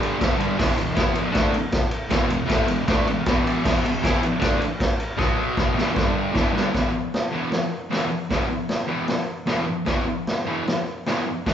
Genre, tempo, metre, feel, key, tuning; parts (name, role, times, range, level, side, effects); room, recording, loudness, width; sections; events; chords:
garage rock duo or trio; 155 BPM; 4/4; straight; E minor; A4 = 440 Hz
thick fuzz guitar; riff; 0.0-11.5 s; E2 to E4; -23 LUFS; equal; distortion
raw garage drum kit; drums; 0.0-11.5 s; crash cymbal, hi-hat, kick drum, ride cymbal, snare drum; -23 LUFS; equal
moderate large studio reverb, RT60 1.2 s; band playing live in one room, nothing above 7.6 kHz; -20 LUFS; side -9 dB against mid
0.0-6.7 A section; 6.7-11.5 B section
drum fill 5.2-6.7
0.2 E5; 5.2 B5; 5.8 E5; 6.0 G5; 6.3 Em; 6.7 E5